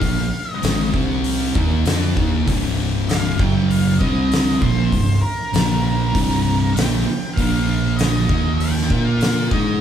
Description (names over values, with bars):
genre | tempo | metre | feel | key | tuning
stoner and doom metal | 98 BPM | 4/4 | straight | C minor | A4 = 445 Hz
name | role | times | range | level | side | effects
octave-fuzz lead guitar | melody | 0.0-9.8 s | Bb4 to G5 | -27 LUFS | right 1 dB | distortion
thick fuzz guitar | riff | 0.0-9.8 s | C2 to Bb4 | -23 LUFS | left 5 dB | distortion
thick fuzz guitar | riff | 0.0-9.8 s | C2 to Bb4 | -21 LUFS | right 5 dB | distortion
fuzz fingered electric bass | bass | 0.0-9.8 s | C1 to Bb2 | -23 LUFS | equal | overdrive
oversized low-tuned drum kit | drums | 0.0-9.7 s | hi-hat, kick drum, snare drum | -22 LUFS | left 1 dB | none
room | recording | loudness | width
moderate large studio reverb, RT60 1.2 s | band playing live in one room | -16 LUFS | side -9 dB against mid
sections
0.0-9.8 A section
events
none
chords
0.0 Bb5; 0.9 C5; 1.6 Bb5; 2.5 C5; 3.4 F#5; 4.0 Cm; 5.5 Bb5; 6.1 C5; 7.4 Bb5; 8.3 Eb5; 8.9 Bb5